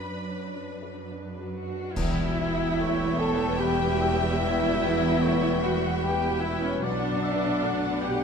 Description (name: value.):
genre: cinematic, emotional film score for orchestra.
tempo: 69-77 BPM.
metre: 3/4.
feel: rubato.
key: unclear.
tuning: A4 = 440 Hz.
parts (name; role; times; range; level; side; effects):
rich studio violin section; melody; 0.0-8.2 s; F#5 to B5; -38 LUFS; left 5 dB; none.
rich studio violin section; second line; 0.0-8.2 s; B4 to F#5; -35 LUFS; left 4 dB; none.
clear concert grand piano; accompaniment; 0.0-8.2 s; B1 to B4; -32 LUFS; left 2 dB; none.
rich studio viola section; accompaniment; 0.0-8.2 s; C#4 to B4; -30 LUFS; right 3 dB; none.
rich studio cello section; bass; 0.0-8.2 s; E2 to B2; -33 LUFS; right 3 dB; none.
hollow flute section; second line; 1.6-8.2 s; C#5 to A5; -33 LUFS; left 5 dB; none.
mellow French horn section; sustained chords; 2.0-8.2 s; G3 to D4; -33 LUFS; left 3 dB; none.
rich studio double bass section; bass; 2.0-8.2 s; E1 to B1; -33 LUFS; right 4 dB; none.
clash cymbals and concert bass drum; percussion; 2.0-3.6 s; none; -36 LUFS; equal; none.
mellow oboe; second line; 2.8-8.2 s; B4 to F#5; -36 LUFS; right 1 dB; none.
room: wet concert hall reverb, RT60 1.9 s.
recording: dark, warm production.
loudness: -23 LUFS.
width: side -6 dB against mid.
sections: 0.0-2.0 A section; 2.0-8.2 B section.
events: band accent 2.0-2.8.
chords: 0.0 Bm/F#; 2.0 Em; 6.8 Bm.